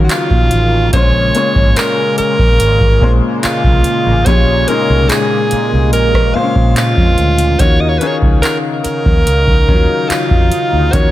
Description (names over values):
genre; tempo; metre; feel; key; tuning
contemporary R&B; 72 BPM; 4/4; straight; Eb minor; A4 = 442 Hz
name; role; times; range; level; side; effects
breathy alto saxophone; melody; 0.0-11.1 s; F4 to F5; -15 LUFS; right 2 dB; tape echo
bright grand piano; accompaniment; 0.0-11.1 s; Bb2 to Db5; -19 LUFS; left 5 dB; none
warm analog pad; sustained chords; 0.0-11.1 s; Bb2 to F5; -20 LUFS; left 1 dB; chorus, tremolo, sidechain pumping
vintage muted fingered electric bass; bass; 0.0-11.1 s; Ab1 to Bb2; -14 LUFS; equal; none
booming analog drum machine; drums; 0.1-11.1 s; handclaps, hi-hat, kick drum, rim click; -13 LUFS; equal; none
room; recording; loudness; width
digital ambience; none; -10 LUFS; side -14 dB against mid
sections
0.0-11.1 A section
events
none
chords
0.0 Ebm9; 0.9 Bbm9; 7.6 Ebm9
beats
0.10 | 0.93 1.76 2.60 3.43 | 4.26 5.10 5.93 6.76 | 7.60 8.43 9.26 10.10 | 10.93